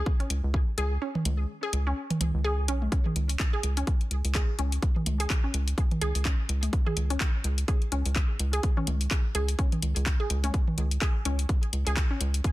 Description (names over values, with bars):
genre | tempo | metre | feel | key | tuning
minimal techno | 126 BPM | 4/4 | swing 57% on 16ths | unclear | A4 = 440 Hz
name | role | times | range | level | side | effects
rubbery square bass | bass | 0.0-12.4 s | B1 to C#2 | -27 LUFS | equal | sidechain pumping
electronic kick drum | drums | 0.1-12.5 s | none | -26 LUFS | equal | none
resonant blip pluck | riff | 0.2-12.2 s | C#4 to G#4 | -35 LUFS | equal | chorus, sidechain pumping, tape echo
house drum kit | drums | 0.2-12.5 s | handclaps, hi-hat | -33 LUFS | left 2 dB | none
electronic toms | percussion | 1.2-10.8 s | none | -32 LUFS | right 2 dB | overdrive, tape echo
room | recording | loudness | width
digital ambience | dense, heavily limited modern master | -25 LUFS | side -17 dB against mid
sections
0.0-12.5 A section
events
kick drops out 1.0-2.9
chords
0.0 C#5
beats
0.06 0.54 | 1.02 1.49 1.97 2.44 | 2.92 3.40 3.87 4.35 | 4.83 5.30 5.78 6.25 | 6.73 7.21 7.68 8.16 | 8.63 9.11 9.59 10.06 | 10.54 11.02 11.49 11.97 | 12.44